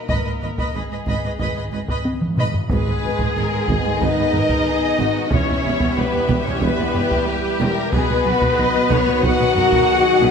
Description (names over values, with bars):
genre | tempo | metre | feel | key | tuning
cinematic, epic orchestral film score | 92 BPM | 4/4 | straight | G# minor | A4 = 440 Hz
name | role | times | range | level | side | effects
rich symphonic violin section | melody | 0.0-10.3 s | G4 to F#5 | -25 LUFS | left 3 dB | none
dark French horn section | sustained chords | 0.0-10.3 s | G3 to F#4 | -24 LUFS | left 6 dB | none
warm symphonic violin section | second line | 0.1-10.3 s | E4 to B5 | -27 LUFS | left 4 dB | none
warm symphonic viola section | accompaniment | 0.1-10.3 s | G3 to D#5 | -27 LUFS | right 1 dB | none
dark tuba | bass | 0.1-10.3 s | E1 to B1 | -28 LUFS | right 4 dB | none
rich chamber double bass section | bass | 0.1-10.3 s | E1 to B1 | -28 LUFS | right 4 dB | none
warm symphonic cello section | bass | 0.1-10.3 s | E2 to B2 | -28 LUFS | right 3 dB | none
solo taiko drums | drums | 0.1-10.3 s | none | -24 LUFS | equal | none
timpani | percussion | 0.1-3.6 s | G#2 | -32 LUFS | left 1 dB | none
flute section | second line | 2.7-10.3 s | G4 to F#5 | -26 LUFS | equal | none
warm symphonic string section | sustained chords | 2.7-10.3 s | B3 to E5 | -28 LUFS | equal | none
warm trombone section | sustained chords | 2.7-10.3 s | D#3 to B3 | -29 LUFS | right 4 dB | none
room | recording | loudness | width
moderate concert hall reverb, RT60 1.9 s | none | -16 LUFS | side -6 dB against mid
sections
0.0-2.7 A section; 2.7-10.3 A section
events
timpani fill 0.1-2.7; drum fill 2.1-2.7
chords
0.1 G#m; 5.3 Em; 7.9 B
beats
| 0.10 0.75 1.40 2.05 | 2.71 3.36 4.01 4.66 | 5.32 5.97 6.62 7.27 | 7.92 8.58 9.23 9.88